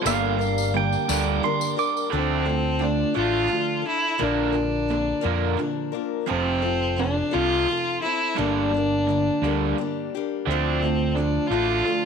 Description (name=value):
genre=folk rock and heartland rock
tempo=58 BPM (dotted quarters)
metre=6/8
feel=straight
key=D minor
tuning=A4 = 440 Hz
part: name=picked acoustic archtop guitar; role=accompaniment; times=0.0-12.1 s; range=G2 to Bb4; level=-29 LUFS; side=left 13 dB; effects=none
part: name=tonewheel organ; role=sustained chords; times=0.0-2.1 s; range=D4 to D5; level=-32 LUFS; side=left 1 dB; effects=slow rotary speaker
part: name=raw garage guitar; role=riff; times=0.0-12.1 s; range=F2 to D4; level=-28 LUFS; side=right 14 dB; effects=overdrive
part: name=pedal steel guitar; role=second line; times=0.1-2.1 s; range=F5 to D6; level=-26 LUFS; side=right 12 dB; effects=none
part: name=fingered electric bass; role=bass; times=0.1-11.8 s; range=F1 to F2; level=-27 LUFS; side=equal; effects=none
part: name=tambourine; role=percussion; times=0.1-2.1 s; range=none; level=-33 LUFS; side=left 16 dB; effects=none
part: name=rich fiddle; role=melody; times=2.1-12.1 s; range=C4 to F4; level=-24 LUFS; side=left 1 dB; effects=slapback echo
room=light reverb, small room ambience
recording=1960s-style stereo with parts hard left and right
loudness=-21 LUFS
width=side -6 dB against mid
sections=0.0-2.1 A section; 2.1-12.1 B section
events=pedal steel guitar solo 0.0-2.1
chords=0.0 Gm; 2.1 Dm; 4.2 Bb; 6.3 F; 8.4 Gm; 10.5 Dm